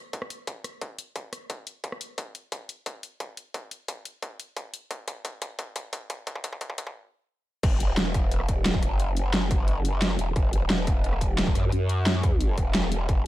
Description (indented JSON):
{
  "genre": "dark technical drum and bass",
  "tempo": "176 BPM",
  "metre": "4/4",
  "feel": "straight",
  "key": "unclear",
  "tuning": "A4 = 441 Hz",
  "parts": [
    { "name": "dubstep drum kit", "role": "drums", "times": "0.1-13.2 s", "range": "crash cymbal, hi-hat, rim click, snare drum", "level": "-29 LUFS", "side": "equal", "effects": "small room reverb" },
    { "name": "electronic kick drum", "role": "drums", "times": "0.1-13.2 s", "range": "none", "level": "-28 LUFS", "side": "equal", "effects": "distortion, high-pass filter on kick, small room reverb" },
    { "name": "growl bass", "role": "bass", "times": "7.6-13.3 s", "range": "E1 to F#2", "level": "-26 LUFS", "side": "equal", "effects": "chorus, overdrive, sidechain pumping" }
  ],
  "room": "little or no reverb",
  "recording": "dark, warm production, high-pass filter",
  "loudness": "-24 LUFS",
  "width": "side -16 dB against mid",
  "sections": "0.0-7.6 A section; 7.6-13.3 B section",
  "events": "build-up 0.0-7.6; drum fill 2.2-7.0; stop 7.0-7.6; drop 7.6-13.3",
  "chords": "none"
}